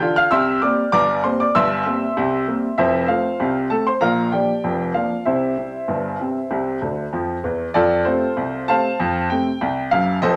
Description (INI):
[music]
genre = ragtime piano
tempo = 97 BPM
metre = 2/4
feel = straight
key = F major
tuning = A4 = 441 Hz
[part]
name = clear baby grand piano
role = solo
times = 0.0-10.4 s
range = F1 to F6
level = -20 LUFS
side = equal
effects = none
[sound]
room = wet small room reverb, RT60 0.5 s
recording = none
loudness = -20 LUFS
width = mono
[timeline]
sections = 0.0-7.7 A section; 7.7-10.4 B section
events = grand piano fill 6.8-7.7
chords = 0.3 C7; 1.5 C7/G; 2.8 F; 4.0 Bb; 5.3 C; 7.7 F